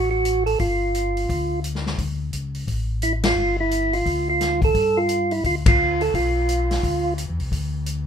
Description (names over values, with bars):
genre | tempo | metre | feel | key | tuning
soul jazz organ trio | 174 BPM | 4/4 | swing 62% on 8ths | unclear | A4 = 438 Hz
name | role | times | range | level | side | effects
percussive tonewheel organ | melody | 0.0-7.1 s | E4 to A4 | -20 LUFS | right 2 dB | slow rotary speaker
mellow tonewheel organ | bass | 0.0-8.1 s | G1 to G2 | -25 LUFS | left 1 dB | overdrive, chorus vibrato, slow rotary speaker
vintage drum kit | drums | 0.2-8.0 s | hi-hat, kick drum, ride cymbal, snare drum | -24 LUFS | left 2 dB | none
room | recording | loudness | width
moderate club reverb, RT60 0.6 s | minimal, uncompressed stereo recording | -19 LUFS | side -8 dB against mid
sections
0.0-8.1 A section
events
band accent 3.2, 5.6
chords
0.0 D (rootless); 0.6 G5; 2.0 D5; 3.4 G13; 7.5 D5